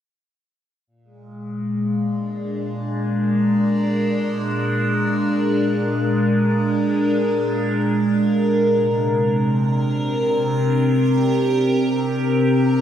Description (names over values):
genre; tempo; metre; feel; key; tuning
ambient; free time; none; none; unclear; A4 = 440 Hz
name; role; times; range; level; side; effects
evolving wavetable pad; sustained chords; 0.9-12.8 s; Bb2 to Bb4; -17 LUFS; equal; phaser, built-in reverb
room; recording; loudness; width
wet plate reverb, RT60 2.5 s; none; -17 LUFS; side -9 dB against mid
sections
0.9-12.8 A section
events
none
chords
0.9 Bb7; 8.7 Gmadd11/C